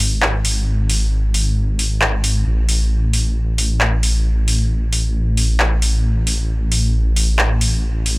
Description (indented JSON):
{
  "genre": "driving peak-time techno",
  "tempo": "134 BPM",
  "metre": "4/4",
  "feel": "straight",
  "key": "unclear",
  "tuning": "A4 = 443 Hz",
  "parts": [
    { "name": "detuned saw bass", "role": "bass", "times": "0.0-8.2 s", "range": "G#1 to A1", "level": "-16 LUFS", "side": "equal", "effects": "none" },
    { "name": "techno drum kit", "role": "drums", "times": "0.0-8.2 s", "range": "handclaps, hi-hat", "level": "-19 LUFS", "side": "equal", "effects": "none" }
  ],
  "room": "little or no reverb",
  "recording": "dry, gritty hardware recording",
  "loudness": "-15 LUFS",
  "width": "side -24 dB against mid",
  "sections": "0.0-8.2 A section",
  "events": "none",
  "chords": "none"
}